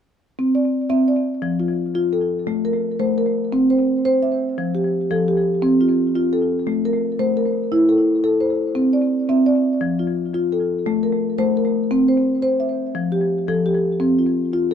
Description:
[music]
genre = southern african traditional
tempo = 115 BPM (dotted quarters)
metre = 12/8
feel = straight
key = C mixolydian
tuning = A4 = 440 Hz
[part]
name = marimba with soft mallets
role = arpeggios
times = 0.4-14.7 s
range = F3 to E5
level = -17 LUFS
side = equal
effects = tape echo
[sound]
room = moderate small room reverb, RT60 0.5 s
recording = dark, warm production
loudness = -17 LUFS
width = side -8 dB against mid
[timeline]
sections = 0.4-14.7 A section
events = none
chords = 0.4 C; 1.4 F; 2.5 Am; 3.5 C; 4.6 F; 6.7 Am; 8.8 C; 9.8 F; 10.9 Am; 11.9 C; 13.0 F

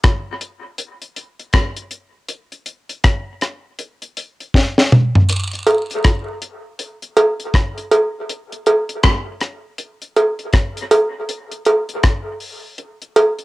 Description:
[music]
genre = reggae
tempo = 80 BPM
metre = 4/4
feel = swing 61% on 16ths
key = none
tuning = none
[part]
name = deep reggae drum kit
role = drums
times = 0.0-13.4 s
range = hi-hat, kick drum, rim click, snare drum, toms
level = -15 LUFS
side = equal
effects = none
[part]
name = jawbone-type rattle and cowbell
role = percussion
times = 5.3-13.4 s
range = none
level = -16 LUFS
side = right 1 dB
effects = dub echo
[sound]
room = moderate studio reverb, RT60 0.5 s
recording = home recording on cassette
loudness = -15 LUFS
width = side -18 dB against mid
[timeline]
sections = 0.0-13.4 A section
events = break 0.0-5.3; drum fill 4.5-5.3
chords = none

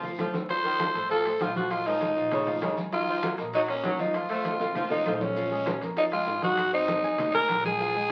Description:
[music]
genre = latin, salsa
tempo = 197 BPM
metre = 4/4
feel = straight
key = Bb minor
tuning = A4 = 439 Hz
[part]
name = clear saxophone section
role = second line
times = 0.0-5.2 s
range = Db3 to A3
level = -36 LUFS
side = equal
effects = none
[part]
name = clear concert grand piano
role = accompaniment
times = 0.0-8.1 s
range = F3 to Ab6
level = -37 LUFS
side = equal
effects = none
[part]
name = upright bass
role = bass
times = 0.0-8.1 s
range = F1 to Bb2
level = -46 LUFS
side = equal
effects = none
[part]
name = congas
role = percussion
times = 0.0-8.1 s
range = none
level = -38 LUFS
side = equal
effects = none
[part]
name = maracas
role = percussion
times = 0.0-8.1 s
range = none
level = -59 LUFS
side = equal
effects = none
[part]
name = bongos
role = percussion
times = 0.2-8.1 s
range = none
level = -46 LUFS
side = equal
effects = none
[part]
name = claves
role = percussion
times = 0.2-7.6 s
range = none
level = -53 LUFS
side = equal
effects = none
[part]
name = guiro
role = percussion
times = 0.2-8.1 s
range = none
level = -51 LUFS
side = equal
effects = none
[part]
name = timbales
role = percussion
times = 0.2-8.1 s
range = none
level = -41 LUFS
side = equal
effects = none
[part]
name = growling tenor saxophone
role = melody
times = 0.5-8.1 s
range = Db4 to C5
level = -28 LUFS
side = equal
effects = none
[sound]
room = wet club reverb, RT60 0.7 s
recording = very old 78 rpm record, vinyl crackle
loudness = -27 LUFS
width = mono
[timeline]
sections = 0.0-5.4 A section; 5.4-8.1 B section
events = drum fill 0.0-0.5, 4.6-5.4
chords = 0.0 F; 1.7 Bbm7; 2.9 Ebm; 4.1 F; 5.4 Bbm7; 6.6 Ab

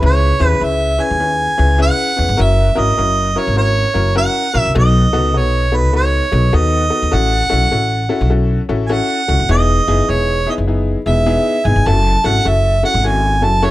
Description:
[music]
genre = uptempo 1960s-style soul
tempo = 101 BPM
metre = 4/4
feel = swing 64% on 8ths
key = unclear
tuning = A4 = 441 Hz
[part]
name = clear upright piano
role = accompaniment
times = 0.0-13.7 s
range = B3 to B4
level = -19 LUFS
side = left 4 dB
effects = none
[part]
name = upright bass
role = bass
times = 0.0-13.7 s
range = E1 to E2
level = -15 LUFS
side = equal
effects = none
[part]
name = mellow harmonica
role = melody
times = 0.1-13.7 s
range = B4 to A5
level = -16 LUFS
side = right 2 dB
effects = none
[sound]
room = light reverb, small room ambience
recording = none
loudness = -12 LUFS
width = side -16 dB against mid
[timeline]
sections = 0.0-13.7 A section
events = none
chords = 0.0 C#m7; 2.4 F#7; 4.8 B7; 7.1 A6; 9.5 Emaj7; 11.9 F#m7

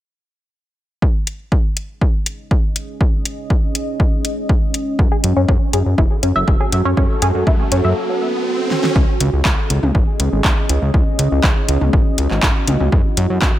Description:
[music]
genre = melodic techno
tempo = 121 BPM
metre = 4/4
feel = straight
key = C# minor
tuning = A4 = 438 Hz
[part]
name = deep dark ambient pad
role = sustained chords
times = 2.8-13.6 s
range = C#4 to D#5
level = -23 LUFS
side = equal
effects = chorus, built-in reverb, sidechain pumping
[part]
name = electronic kick drum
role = drums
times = 1.0-13.5 s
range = none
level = -16 LUFS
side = equal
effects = small room ambience
[part]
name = deep house drum kit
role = drums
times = 1.3-13.5 s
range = handclaps, hi-hat, snare drum, toms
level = -20 LUFS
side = left 1 dB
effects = overdrive, sidechain pumping on hats, small room ambience, sidechain pumping on toms
[part]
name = fat analog bass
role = bass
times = 5.0-13.5 s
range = F#1 to F#2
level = -18 LUFS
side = equal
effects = sidechain pumping
[part]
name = riser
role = sound effects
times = 6.7-9.0 s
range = none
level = -26 LUFS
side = right 1 dB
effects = none
[part]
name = tight sequenced synth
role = arpeggios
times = 5.1-13.5 s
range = C#4 to E5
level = -22 LUFS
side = left 1 dB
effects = chorus, phaser, sidechain pumping, digital delay
[part]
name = airy breathy pad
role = texture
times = 9.9-13.6 s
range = B3 to A4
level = -34 LUFS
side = equal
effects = none
[sound]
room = digital ambience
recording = none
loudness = -14 LUFS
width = side -13 dB against mid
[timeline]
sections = 1.0-9.0 A section; 9.0-13.6 B section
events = filter sweep on ambient pad 1.0-9.0; riser 6.7-9.0; break 8.0-9.0; drum fill 8.7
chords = 1.0 C#5; 5.0 F#m; 9.0 C#m; 12.9 F#m

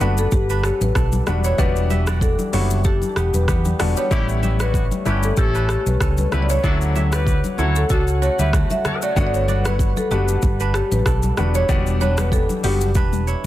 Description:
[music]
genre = afrobeats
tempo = 95 BPM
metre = 4/4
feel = swing 55% on 16ths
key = unclear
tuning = A4 = 439 Hz
[part]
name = marimba with medium mallets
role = melody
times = 0.0-13.5 s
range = F#4 to E5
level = -25 LUFS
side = left 2 dB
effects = ping-pong delay
[part]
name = clear concert grand piano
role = accompaniment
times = 0.0-12.9 s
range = F#3 to F#4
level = -27 LUFS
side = left 5 dB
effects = none
[part]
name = warm brass ensemble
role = sustained chords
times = 0.0-13.5 s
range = C#3 to F#5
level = -33 LUFS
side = left 1 dB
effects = none
[part]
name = kora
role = riff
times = 0.0-13.5 s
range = A3 to E5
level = -29 LUFS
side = right 6 dB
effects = ping-pong delay
[part]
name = hollow-body short-scale fingered electric bass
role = bass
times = 0.0-13.3 s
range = E1 to E2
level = -20 LUFS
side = equal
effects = none
[part]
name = afro-pop drum kit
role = drums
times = 0.0-13.4 s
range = hi-hat, kick drum, rim click, shaker, toms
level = -22 LUFS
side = equal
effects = none
[part]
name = congas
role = percussion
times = 0.0-13.5 s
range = none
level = -29 LUFS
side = left 3 dB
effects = none
[part]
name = clear horn section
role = second line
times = 4.1-9.0 s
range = B3 to C#5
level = -29 LUFS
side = left 2 dB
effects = ping-pong delay
[sound]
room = small room ambience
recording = dense, heavily limited modern master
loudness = -16 LUFS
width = side -14 dB against mid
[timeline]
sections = 0.0-13.5 A section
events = drum fill 13.0-13.5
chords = 0.0 Gmaj7; 1.3 Em7; 4.1 A7; 6.6 Dmaj7; 9.2 Gmaj7; 11.4 Em7

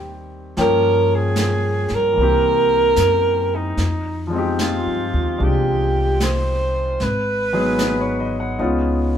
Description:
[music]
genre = jazz ballad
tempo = 75 BPM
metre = 4/4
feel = swing 68% on 8ths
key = unclear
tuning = A4 = 440 Hz
[part]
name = warm alto saxophone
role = melody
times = 0.0-8.6 s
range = Eb4 to C5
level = -19 LUFS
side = right 2 dB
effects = none
[part]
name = clear baby grand piano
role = accompaniment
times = 0.0-9.2 s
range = Eb3 to G5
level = -23 LUFS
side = left 2 dB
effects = none
[part]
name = upright bass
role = bass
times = 0.0-9.2 s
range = Ab1 to G2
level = -22 LUFS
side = equal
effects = none
[part]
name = jazz brush drum kit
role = drums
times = 0.6-9.2 s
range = brushed snare drum, hi-hat, snare drum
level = -27 LUFS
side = right 1 dB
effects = none
[sound]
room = moderate studio reverb, RT60 0.7 s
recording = band playing live in one room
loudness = -16 LUFS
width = side -9 dB against mid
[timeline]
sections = 0.0-9.2 A section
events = none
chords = 0.0 Abmaj7 (rootless); 0.6 Gm7b5; 2.2 C7; 3.8 Fm9; 7.0 Abm7; 8.6 Db9

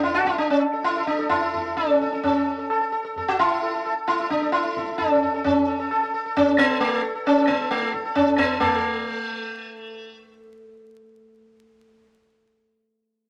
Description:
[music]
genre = indian classical, Hindustani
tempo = 132 BPM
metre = 7/4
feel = straight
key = A raga bilaval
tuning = A4 = 443 Hz
[part]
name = sitar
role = melody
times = 0.0-12.1 s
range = A3 to A4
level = -23 LUFS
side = equal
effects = none
[part]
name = tabla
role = percussion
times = 0.1-8.8 s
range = none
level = -31 LUFS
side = equal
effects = none
[sound]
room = light reverb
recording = vinyl crackle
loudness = -22 LUFS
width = mono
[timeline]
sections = 0.0-8.6 A section; 8.6-11.7 B section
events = speeding up 0.0-11.7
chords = none

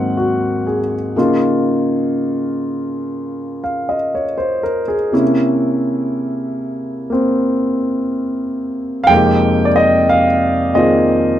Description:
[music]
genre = solo jazz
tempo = 60 BPM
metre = 4/4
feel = swing 67% on 8ths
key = unclear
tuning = A4 = 440 Hz
[part]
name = warm grand piano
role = solo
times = 0.0-11.4 s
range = F2 to G5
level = -14 LUFS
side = equal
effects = none
[sound]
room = light reverb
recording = dark, warm production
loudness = -14 LUFS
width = side -11 dB against mid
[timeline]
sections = 0.0-11.4 A section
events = none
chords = 0.0 Ab9; 1.1 Db69; 5.1 C7b9; 9.1 Fm11

